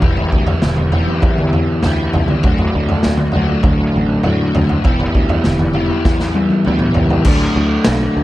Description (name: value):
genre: psychedelic rock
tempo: 100 BPM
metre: 4/4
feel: straight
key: E minor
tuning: A4 = 440 Hz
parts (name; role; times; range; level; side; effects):
- crunchy overdriven guitar; riff; 0.0-8.2 s; D3 to A4; -16 LUFS; equal; rotary speaker
- picked electric bass; bass; 0.0-8.2 s; E1 to A2; -20 LUFS; equal; none
- raw garage drum kit; drums; 0.0-8.0 s; crash cymbal, kick drum, ride cymbal, snare drum, toms; -16 LUFS; equal; none
room: light reverb, small room ambience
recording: echo-heavy mix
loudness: -12 LUFS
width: side -16 dB against mid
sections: 0.0-7.3 A section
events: drum fill 6.1-7.3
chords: 0.0 Em; 2.4 D; 4.9 Em; 7.3 D6